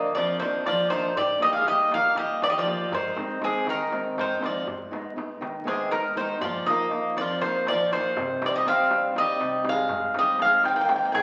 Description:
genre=greek folk, Greek bouzouki band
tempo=240 BPM (eighths)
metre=7/8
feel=straight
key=unclear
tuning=A4 = 440 Hz
part: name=Greek bouzouki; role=melody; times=0.0-11.2 s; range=Ab4 to G5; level=-26 LUFS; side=equal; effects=none
part: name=Greek bouzouki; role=second line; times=0.0-11.2 s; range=C3 to C4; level=-33 LUFS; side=equal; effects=none
part: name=fingerpicked acoustic archtop guitar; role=accompaniment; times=0.0-11.2 s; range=F2 to G4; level=-35 LUFS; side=equal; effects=none
part: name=darbuka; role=percussion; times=0.2-11.2 s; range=none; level=-39 LUFS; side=equal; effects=none
room=wet large studio reverb, RT60 1.4 s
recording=very old 78 rpm record, vinyl crackle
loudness=-25 LUFS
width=mono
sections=0.0-11.2 A section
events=none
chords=0.0 Bb; 1.2 Eb; 2.9 Ab; 4.7 Abm; 6.4 Bbsus4; 8.2 Cm; 9.9 Ab

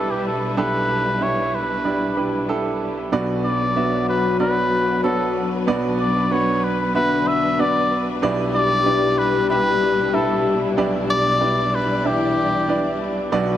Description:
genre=pop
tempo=94 BPM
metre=4/4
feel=straight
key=unclear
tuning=A4 = 439 Hz
part: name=trumpet with cup mute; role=melody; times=0.0-13.0 s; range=G4 to E5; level=-22 LUFS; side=left 1 dB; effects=dub echo
part: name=warm grand piano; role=accompaniment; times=0.0-13.6 s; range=B1 to F#5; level=-22 LUFS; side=right 3 dB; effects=dub echo
part: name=warm studio string section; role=sustained chords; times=0.0-13.6 s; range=B2 to D5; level=-27 LUFS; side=left 2 dB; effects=none
part: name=dark French horn section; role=second line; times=3.1-13.6 s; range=D3 to G4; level=-24 LUFS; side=left 6 dB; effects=none
room=moderate plate reverb, RT60 2.7 s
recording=echo-heavy mix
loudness=-18 LUFS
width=side -11 dB against mid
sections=0.0-3.1 A section; 3.1-13.6 B section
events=none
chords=0.0 G6/B; 3.1 Bm; 8.2 G6/B

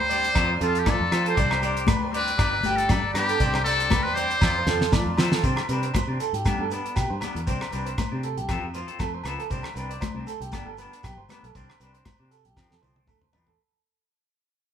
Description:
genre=highlife guitar band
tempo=118 BPM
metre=4/4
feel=swing 54% on 16ths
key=unclear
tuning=A4 = 439 Hz
part: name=trumpet with metal mute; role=melody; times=0.0-4.9 s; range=F4 to C5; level=-25 LUFS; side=left 1 dB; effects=none
part: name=accordion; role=sustained chords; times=0.0-5.4 s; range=D5 to C6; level=-35 LUFS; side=right 2 dB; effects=light tremolo tuning
part: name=electric guitar at the edge of break-up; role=arpeggios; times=0.0-13.6 s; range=G4 to D5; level=-30 LUFS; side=right 4 dB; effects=spring reverb
part: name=fingered electric bass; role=bass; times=0.0-13.6 s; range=G1 to F3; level=-30 LUFS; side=equal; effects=none
part: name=clean electric guitar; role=accompaniment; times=0.1-13.5 s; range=F3 to A4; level=-32 LUFS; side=left 4 dB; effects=none
part: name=damped 70s drum kit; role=drums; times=0.1-13.6 s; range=hi-hat, kick drum, rim click, snare drum, toms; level=-26 LUFS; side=equal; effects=none
part: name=shekere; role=percussion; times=0.1-13.5 s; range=none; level=-36 LUFS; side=right 2 dB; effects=none
part: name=congas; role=percussion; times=0.3-13.2 s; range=none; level=-32 LUFS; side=left 6 dB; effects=none
part: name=agogo bells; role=percussion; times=0.4-13.5 s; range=none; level=-35 LUFS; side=left 2 dB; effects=none
room=moderate large studio reverb, RT60 0.9 s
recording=band playing live in one room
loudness=-22 LUFS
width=side -9 dB against mid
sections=0.0-5.4 A section; 5.4-13.6 B section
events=drum fill 4.4-5.4, 12.6-13.6; fade-out 5.4-13.6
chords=0.4 F; 1.4 Csus2; 2.4 G; 3.4 Csus2; 4.4 F; 5.4 Csus2; 6.5 G; 7.5 Csus2; 8.5 F; 9.5 Csus2; 10.5 G; 11.5 Csus2; 12.6 F

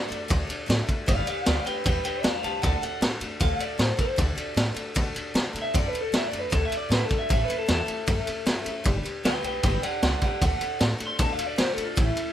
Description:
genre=rockabilly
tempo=154 BPM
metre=4/4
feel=straight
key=D major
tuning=A4 = 442 Hz
part: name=electric guitar through a small old amp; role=melody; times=0.0-12.3 s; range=E4 to C6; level=-30 LUFS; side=equal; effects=tape echo
part: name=picked steel-string acoustic guitar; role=accompaniment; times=0.0-12.3 s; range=A2 to B4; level=-35 LUFS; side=left 4 dB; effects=none
part: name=upright bass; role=bass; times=0.0-12.2 s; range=G1 to C3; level=-30 LUFS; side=equal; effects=none
part: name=raw garage drum kit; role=drums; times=0.1-12.3 s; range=kick drum, ride cymbal, snare drum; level=-26 LUFS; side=equal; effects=none
room=little or no reverb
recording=faint mains hum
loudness=-23 LUFS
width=side -11 dB against mid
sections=0.0-12.3 A section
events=clean electric guitar solo 0.0-12.3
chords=0.0 D; 1.1 G; 2.6 D; 7.3 A; 8.9 G; 10.4 D

